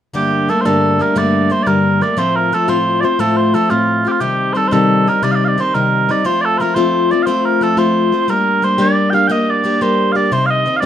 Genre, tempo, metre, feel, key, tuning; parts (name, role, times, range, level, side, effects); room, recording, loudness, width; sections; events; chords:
celtic folk, Celtic slide; 118 BPM (dotted quarters); 12/8; straight; G minor; A4 = 439 Hz
picked plugged-in steel-string acoustic guitar; accompaniment; 0.1-10.9 s; G2 to G4; -15 LUFS; left 2 dB
mellow small bagpipes; melody; 0.2-10.9 s; F4 to G5; -15 LUFS; right 2 dB
moderate studio reverb, RT60 0.5 s; dark, warm production; -12 LUFS; side -10 dB against mid
0.1-10.9 A section
0.1 Gmadd9; 2.2 F/A; 4.2 Cm; 6.2 F; 8.3 Gm; 10.3 Cm